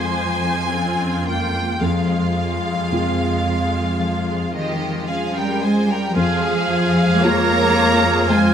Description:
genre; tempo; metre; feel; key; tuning
cinematic; 55 BPM; 4/4; rubato; F minor; A4 = 440 Hz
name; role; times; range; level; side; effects
warm symphonic violin section; melody; 0.0-8.5 s; Eb5 to Bb5; -24 LUFS; equal; none
felt-muted upright piano; accompaniment; 0.0-8.5 s; F2 to F4; -25 LUFS; left 1 dB; none
rich symphonic viola section; accompaniment; 0.0-8.5 s; F3 to C5; -26 LUFS; right 1 dB; none
concert harp; arpeggios; 0.0-8.5 s; F3 to Db4; -28 LUFS; left 7 dB; none
rich symphonic cello section; bass; 0.0-8.5 s; F2 to Bb3; -23 LUFS; right 2 dB; none
clear symphonic violin section; second line; 4.5-8.5 s; G4 to Db5; -25 LUFS; equal; none
warm French horn section; sustained chords; 4.5-8.5 s; Eb3 to Bb3; -24 LUFS; left 4 dB; none
flute section; second line; 6.1-8.5 s; Ab6; -26 LUFS; right 3 dB; none
warm clarinet; second line; 6.2-8.5 s; F4; -30 LUFS; equal; none
warm oboe; second line; 6.2-8.5 s; F5; -24 LUFS; right 1 dB; none
rich symphonic double bass section; bass; 6.2-8.5 s; F2; -25 LUFS; right 2 dB; none
room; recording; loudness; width
moderate recital hall reverb, RT60 1.6 s; close, detailed microphones; -16 LUFS; side -8 dB against mid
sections
0.0-6.2 A section; 6.2-8.5 A section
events
none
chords
0.0 Fm

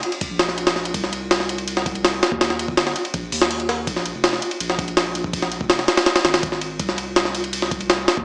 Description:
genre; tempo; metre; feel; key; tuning
drum and bass, jungle; 164 BPM; 4/4; straight; unclear; A4 = 440 Hz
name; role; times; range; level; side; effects
jungle sampler-style drum kit; drums; 0.0-8.2 s; hi-hat, kick drum, ride cymbal, snare drum; -22 LUFS; equal; none
soft dub sub bass; bass; 0.3-8.2 s; F1 to Eb2; -33 LUFS; equal; none
room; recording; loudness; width
moderate plate reverb, RT60 2.0 s; dry, gritty hardware recording, transformer saturation, small speaker sound; -21 LUFS; mono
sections
0.0-8.2 A section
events
none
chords
none

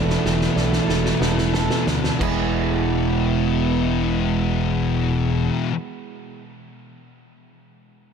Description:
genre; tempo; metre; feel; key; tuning
rock, shoegaze and dream pop; 86-96 BPM; 4/4; straight; E mixolydian; A4 = 440 Hz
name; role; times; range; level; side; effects
direct-recorded clean electric guitar; arpeggios; 0.0-5.7 s; E3 to A4; -31 LUFS; right 8 dB; lush chorus, slapback echo
electric guitar through a small old amp; riff; 0.0-5.7 s; E2 to E4; -24 LUFS; right 10 dB; reverse reverb
thick fuzz guitar; riff; 0.0-5.7 s; E2 to E3; -23 LUFS; left 7 dB; distortion, ensemble chorus
growling fingered electric bass; bass; 0.0-5.5 s; E1 to D2; -25 LUFS; equal; overdrive
loose indie drum kit; drums; 0.1-2.4 s; crash cymbal, kick drum, snare drum; -26 LUFS; equal; none
room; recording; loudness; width
light reverb, small room ambience; dark, warm production; -18 LUFS; side -6 dB against mid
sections
0.0-2.5 A section; 2.5-5.3 B section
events
drum fill 0.0-2.5; slowing down 0.0-2.5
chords
0.0 E7sus4; 2.2 E

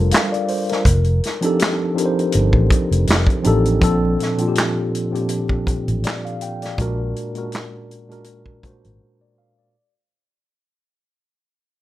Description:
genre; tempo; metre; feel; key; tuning
R&B, neo-soul; 81 BPM; 4/4; swing 53% on 16ths; Bb major; A4 = 440 Hz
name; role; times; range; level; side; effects
mellow tine electric piano; accompaniment; 0.0-9.9 s; Bb2 to G5; -20 LUFS; equal; medium stereo tremolo, plate reverb
vintage muted fingered electric bass; bass; 0.0-9.0 s; F1 to Bb1; -18 LUFS; equal; none
warm soul drum kit; drums; 0.1-9.0 s; handclaps, hi-hat, kick drum, snare drum; -20 LUFS; equal; none
room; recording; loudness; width
light reverb; vinyl crackle; -16 LUFS; side -15 dB against mid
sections
0.0-3.8 A section; 3.8-9.7 B section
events
fade-out 3.8-9.7; break 9.0-9.7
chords
0.0 Gm9; 0.9 F13; 3.8 Bbmaj9; 6.8 Bb7b13

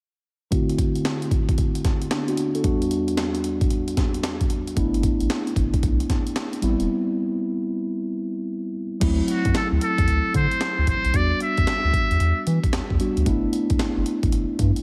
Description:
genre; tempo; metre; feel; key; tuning
R&B, new jack swing; 113 BPM; 4/4; swing 65% on 16ths; unclear; A4 = 439 Hz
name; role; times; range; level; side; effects
mellow tine electric piano; accompaniment; 0.5-14.8 s; E2 to A4; -27 LUFS; equal; low-pass filter
breakbeat sampler-style drum kit; drums; 0.5-14.8 s; crash cymbal, handclaps, hi-hat, kick drum, snare drum; -26 LUFS; equal; none
round analog bass; bass; 4.8-14.7 s; E1 to E3; -25 LUFS; equal; none
trumpet with metal mute; melody; 9.3-12.4 s; F#4 to E5; -27 LUFS; equal; delay
room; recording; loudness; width
little or no reverb; none; -23 LUFS; mono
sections
0.5-9.0 A section; 9.0-14.8 B section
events
break 6.9-9.0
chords
0.5 D7; 2.6 Em7; 4.8 G6; 6.6 Am7 (rootless); 9.0 D7; 11.1 Em7; 13.3 G6

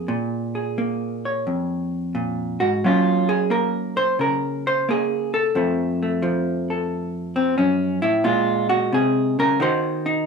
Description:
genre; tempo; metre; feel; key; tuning
solo jazz; 88 BPM; 4/4; swing 68% on 8ths, rubato; Bb minor; A4 = 440 Hz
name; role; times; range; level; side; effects
vintage hollow-body jazz guitar; solo; 0.0-10.3 s; F2 to Db5; -19 LUFS; equal; none
room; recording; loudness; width
wet studio ambience, RT60 0.5 s; heard from further back in the room; -19 LUFS; side -5 dB against mid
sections
0.0-10.3 A section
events
hollow-body jazz guitar solo 0.0-10.3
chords
0.0 Bbm7; 2.8 Gb; 5.6 F; 8.3 Bbm7; 9.6 Ebm

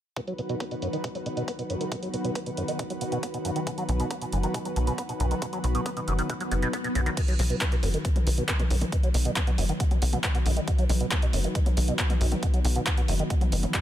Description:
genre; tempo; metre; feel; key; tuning
uplifting trance; 137 BPM; 4/4; straight; B major; A4 = 440 Hz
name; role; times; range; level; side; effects
lush unison pad; sustained chords; 0.2-13.8 s; D#3 to B4; -32 LUFS; equal; chorus, sidechain pumping
liquid acid bass; arpeggios; 0.2-13.8 s; F#2 to B3; -32 LUFS; right 1 dB; chorus, sidechain pumping, ping-pong delay
electronic kick drum; drums; 0.2-13.8 s; none; -26 LUFS; equal; high-pass filter on kick, studio reverb
punchy analog drum machine; drums; 0.2-13.8 s; crash cymbal, handclaps, hi-hat, toms; -33 LUFS; equal; overdrive, low-pass filter on hats, studio reverb, low-pass filter on cymbals, low-pass filter on toms, low-pass filter on snare
tight sequencer bass; bass; 3.9-13.7 s; F#1 to B1; -26 LUFS; equal; sidechain pumping
swell; sound effects; 6.5-7.2 s; none; -36 LUFS; left 3 dB; none
room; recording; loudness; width
little or no reverb; none; -24 LUFS; side -12 dB against mid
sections
0.2-7.2 A section; 7.2-13.8 B section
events
filter sweep on acid bass 0.2-7.2, 7.2-13.8; swell 6.5-7.2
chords
0.2 B

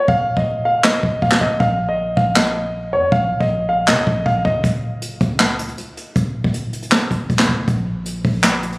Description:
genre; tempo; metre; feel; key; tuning
hip hop, trap; 158 BPM; 4/4; half-time; unclear; A4 = 442 Hz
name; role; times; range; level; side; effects
dark grand piano; melody; 0.0-4.6 s; Db5 to F5; -18 LUFS; equal; digital delay
clean 808-style bass; bass; 0.1-8.8 s; F1 to Db3; -25 LUFS; equal; none
jazz brush drum kit; drums; 0.1-8.8 s; handclaps, hi-hat, kick drum, snare drum; -18 LUFS; equal; none
room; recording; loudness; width
small room ambience; recorded on a phone in the room, studio reverb; -15 LUFS; side -25 dB against mid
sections
0.0-8.8 A section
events
break 0.0-4.6, 4.6-8.8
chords
0.0 F5; 1.6 Bbm; 4.6 Gb5; 7.7 N.C.

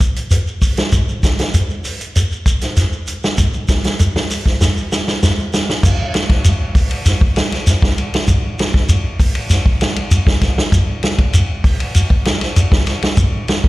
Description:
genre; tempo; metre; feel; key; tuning
afrobeat; 98 BPM; 4/4; straight; none; none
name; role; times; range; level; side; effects
vintage drum kit; drums; 0.0-13.7 s; crash cymbal, hi-hat, kick drum, ride cymbal, snare drum; -15 LUFS; equal; none
shekere; percussion; 0.0-13.6 s; none; -16 LUFS; equal; none
room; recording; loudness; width
little or no reverb; live gig heard through the venue's PA, recital hall reverb; -13 LUFS; side -19 dB against mid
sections
0.0-5.8 A section; 5.8-13.7 B section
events
drum fill 4.6-5.8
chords
none

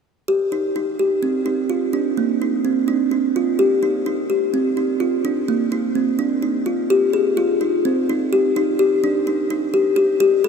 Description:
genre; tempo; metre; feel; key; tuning
contemporary instrumental, contemporary; 254 BPM (eighths); 7/8; straight; F dorian; A4 = 440 Hz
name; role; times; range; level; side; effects
kalimba; solo; 0.3-10.5 s; Bb3 to Ab4; -17 LUFS; equal; none
room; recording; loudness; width
wet huge ambient reverb, RT60 7.2 s; in a vast, echoing space; -17 LUFS; side -6 dB against mid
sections
0.3-6.9 A section; 6.9-10.5 B section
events
none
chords
none

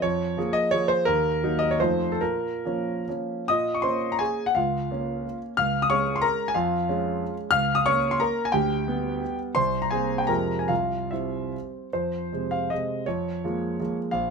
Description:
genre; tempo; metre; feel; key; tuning
classical, romantic triple-time dance for piano with dotted rhythms; 135-202 BPM; 3/4; rubato; Bb minor, F minor from 7.5 s; A4 = 441 Hz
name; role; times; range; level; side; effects
warm concert grand piano; solo; 0.0-14.3 s; Bb1 to F6; -23 LUFS; equal; none
room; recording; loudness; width
light reverb; none; -23 LUFS; side -5 dB against mid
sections
0.0-3.5 A section; 3.5-11.9 B section; 11.9-14.3 A section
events
none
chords
0.0 Db6/F; 1.1 Ebm; 1.8 F7; 2.2 Bbm; 4.6 Bbm/Db; 5.6 Db; 6.6 Db/F; 7.5 Bbm/Db; 8.5 G/D; 9.6 Abmaj9/C; 10.3 Fm; 10.7 C; 11.9 Fm; 13.1 Db6/F

